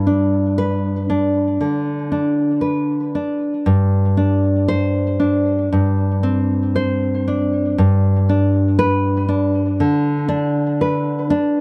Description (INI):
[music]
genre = romantic piece for solo classical guitar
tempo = 59 BPM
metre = 4/4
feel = rubato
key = G major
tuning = A4 = 439 Hz
[part]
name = nylon-string guitar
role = solo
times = 0.0-11.6 s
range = G2 to C5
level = -18 LUFS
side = equal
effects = none
[sound]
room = studio reverb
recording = dry, close 1970s-style studio recording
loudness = -18 LUFS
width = mono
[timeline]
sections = 0.0-11.6 A section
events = none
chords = 0.0 G; 3.7 Gsus4; 7.8 G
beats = 0.59 1.60 2.63 | 3.67 4.71 5.73 6.77 | 7.79 8.81 9.82 10.82